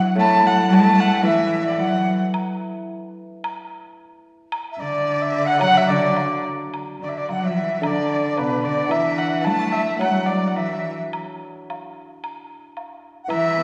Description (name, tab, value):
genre	chinese traditional, Chinese chamber ensemble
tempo	110 BPM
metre	2/4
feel	rubato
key	D gong mode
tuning	A4 = 441 Hz
part	dark erhu	melody	0.0-2.2, 4.8-11.0, 13.3-13.6 s	B4 to A5	-24 LUFS	equal	none
part	mellow dizi	second line	0.0-2.2, 4.7-11.0, 13.2-13.6 s	B4 to B5	-28 LUFS	equal	none
part	rich cello	second line	0.0-2.2, 4.8-11.0, 13.3-13.6 s	B2 to A3	-25 LUFS	equal	none
part	hammered dulcimer	accompaniment	0.0-2.9, 5.6-13.6 s	A2 to B3	-29 LUFS	equal	none
part	woodblock	percussion	2.3-13.4 s	none	-36 LUFS	equal	none
room	wet concert hall reverb, RT60 1.8 s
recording	recorded in a church or concert hall, nothing above 10.8 kHz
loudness	-20 LUFS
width	mono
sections	0.0-6.7 A section; 6.7-13.6 B section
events	none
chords	none